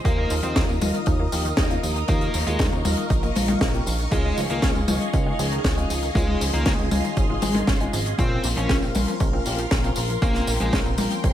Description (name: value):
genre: italo disco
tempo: 118 BPM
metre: 4/4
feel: straight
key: unclear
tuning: A4 = 440 Hz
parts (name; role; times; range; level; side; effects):
- dark smooth lead guitar; melody; 0.0-10.8 s; Ab3 to Db5; -31 LUFS; equal; overdrive, tape echo
- phased string machine; sustained chords; 0.0-11.3 s; Ab4 to Eb6; -30 LUFS; equal; ensemble chorus, phaser
- analog pluck; arpeggios; 0.1-11.3 s; Eb3 to Eb4; -33 LUFS; right 4 dB; chorus, tape echo
- dark grand piano; stabs; 0.1-11.3 s; F3 to Ab4; -31 LUFS; left 5 dB; tape echo
- chorused synth bass; bass; 0.1-11.3 s; F1 to Eb2; -26 LUFS; equal; none
- electronic kick drum; drums; 0.1-11.3 s; none; -24 LUFS; equal; overdrive
- tight funk drum kit; drums; 0.1-11.3 s; hi-hat, snare drum, tambourine, toms; -26 LUFS; left 2 dB; gated reverb
room: small room ambience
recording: none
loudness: -20 LUFS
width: side -11 dB against mid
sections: 0.0-11.3 A section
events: none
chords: 0.1 Ebsus2; 4.1 Dbadd9; 8.2 Bbmadd9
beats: | 0.05 0.56 1.07 1.58 | 2.09 2.59 3.10 3.61 | 4.12 4.63 5.14 5.64 | 6.15 6.66 7.17 7.68 | 8.19 8.70 9.20 9.71 | 10.22 10.73 11.24